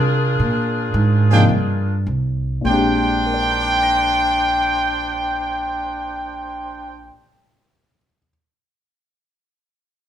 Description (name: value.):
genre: jazz, big band swing.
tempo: 100-114 BPM.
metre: 4/4.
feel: swing 67% on 8ths.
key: Bb mixolydian.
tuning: A4 = 441 Hz.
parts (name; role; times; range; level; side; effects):
mellow saxophone section; melody; 0.0-2.1 s; D4 to Bb4; -23 LUFS; left 2 dB; none.
upright bass; bass; 0.0-7.1 s; Bb1 to C3; -20 LUFS; right 2 dB; none.
dark baby grand piano; accompaniment; 1.3-8.3 s; Bb2 to Bb6; -21 LUFS; left 3 dB; none.
clear trumpet section; stabs; 1.3-7.1 s; D4 to G5; -19 LUFS; equal; none.
room: moderate large studio reverb, RT60 1.0 s.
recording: minimal, uncompressed stereo recording.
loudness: -16 LUFS.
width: side -10 dB against mid.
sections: 0.0-2.7 A section; 2.7-7.4 B section.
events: slowing down 0.0-2.7.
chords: 0.0 Bb13.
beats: | 0.40 0.94 1.50 2.07 | 2.66 3.26 3.85 4.45 | 5.05 5.65 6.25 6.85.